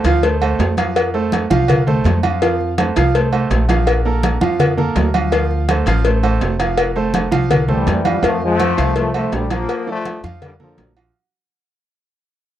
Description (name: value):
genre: latin, salsa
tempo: 165 BPM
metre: 4/4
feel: straight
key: F major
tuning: A4 = 439 Hz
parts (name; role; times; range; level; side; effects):
- upright bass; bass; 0.0-11.1 s; F1 to F2; -19 LUFS; equal; none
- agogo bells and timbales; percussion; 0.0-11.1 s; none; -23 LUFS; right 7 dB; none
- congas; percussion; 0.0-11.0 s; none; -22 LUFS; left 2 dB; none
- cowbell; percussion; 0.0-11.0 s; none; -22 LUFS; left 7 dB; none
- bright baby grand piano; accompaniment; 0.1-11.1 s; F3 to F5; -20 LUFS; right 4 dB; none
- bright trombone section; melody; 7.7-10.9 s; D3 to Bb3; -20 LUFS; left 3 dB; none
room: little or no reverb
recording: dry, close 1970s-style studio recording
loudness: -14 LUFS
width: side -12 dB against mid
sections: 0.0-8.2 A section; 8.2-11.1 B section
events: fade-out 8.2-11.1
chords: 0.0 Dm7; 1.0 F; 3.9 Bbmaj7; 5.3 Dm7; 6.8 Fadd9; 8.2 F; 9.7 Bbmaj7